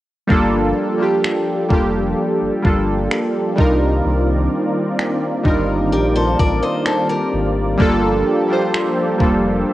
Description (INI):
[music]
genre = contemporary R&B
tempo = 64 BPM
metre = 4/4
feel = straight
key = G minor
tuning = A4 = 440 Hz
[part]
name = warm analog keys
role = accompaniment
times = 0.3-9.7 s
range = G3 to C5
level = -18 LUFS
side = equal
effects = chorus, phaser, cassette tape
[part]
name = warm analog pad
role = sustained chords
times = 0.3-9.7 s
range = Eb3 to D5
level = -22 LUFS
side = equal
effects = chorus, sidechain pumping, cassette tape
[part]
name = sub bass with octave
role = bass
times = 0.3-9.6 s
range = F1 to C2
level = -22 LUFS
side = equal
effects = none
[part]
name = crisp 8-bit digital drum machine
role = drums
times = 0.3-9.4 s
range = finger snaps, kick drum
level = -19 LUFS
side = equal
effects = cassette tape
[part]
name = picked old ladder-braced acoustic guitar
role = arpeggios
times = 5.9-7.8 s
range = G4 to Eb5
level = -20 LUFS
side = left 2 dB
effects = cassette tape
[sound]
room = light reverb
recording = home recording on cassette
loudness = -15 LUFS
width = side -15 dB against mid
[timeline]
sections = 0.3-9.7 A section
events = hi-hats muted 0.3-9.7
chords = 0.3 Gm9; 3.6 Cm11; 7.8 Gm9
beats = | 0.30 1.24 2.18 3.11 | 4.05 4.99 5.93 6.86 | 7.80 8.74 9.68